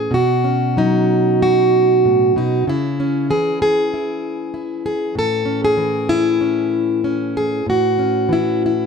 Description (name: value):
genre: folk, solo fingerstyle acoustic guitar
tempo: 95 BPM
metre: 4/4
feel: rubato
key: unclear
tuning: A4 = 444 Hz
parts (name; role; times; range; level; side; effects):
- fingerpicked plugged-in steel-string acoustic guitar; solo; 0.0-8.9 s; A2 to A4; -15 LUFS; equal; none
room: moderate studio reverb, RT60 0.7 s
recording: none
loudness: -15 LUFS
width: side -6 dB against mid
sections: 0.0-8.9 A section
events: none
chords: 0.1 Badd9; 2.7 C#m; 5.2 Amaj7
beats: | 0.12 0.76 1.40 2.04 | 2.67 3.30 3.92 4.54 | 5.16 5.77 6.39 7.02 | 7.65 8.29